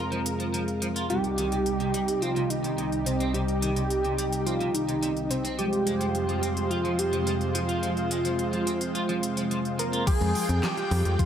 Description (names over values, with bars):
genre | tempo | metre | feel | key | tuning
synthwave | 107 BPM | 4/4 | straight | F minor | A4 = 440 Hz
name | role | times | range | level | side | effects
wide unison lead | melody | 0.0-11.3 s | C4 to Bb4 | -29 LUFS | right 1 dB | digital delay
lush unison pad | sustained chords | 0.0-11.3 s | C2 to G5 | -30 LUFS | equal | chorus, vintage 12-bit sampler grit, sidechain pumping
clean electric guitar | riff | 0.0-10.0 s | C3 to F4 | -35 LUFS | right 2 dB | analog chorus, digital delay
mellow synth brass | stabs | 0.0-10.0 s | G3 to C5 | -32 LUFS | right 2 dB | chorus
pop drum kit | drums | 0.1-11.3 s | crash cymbal, handclaps, hi-hat, snare drum | -34 LUFS | left 1 dB | studio reverb
thumb-piano-like synth pluck | arpeggios | 10.1-11.3 s | F3 to F4 | -32 LUFS | left 3 dB | chorus, cassette tape, digital delay
electronic kick drum | drums | 10.1-11.3 s | none | -23 LUFS | left 1 dB | studio reverb
modern bright picked electric bass | bass | 10.2-11.2 s | F2 | -25 LUFS | left 1 dB | sidechain pumping
room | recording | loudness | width
moderate lush hall reverb, RT60 2.5 s | none | -24 LUFS | side -9 dB against mid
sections
0.0-10.1 A section; 10.1-11.3 B section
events
filter sweep on analog synth pad 0.0-10.1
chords
0.0 Fm; 1.1 Cm; 5.6 Fm; 10.1 Fmadd9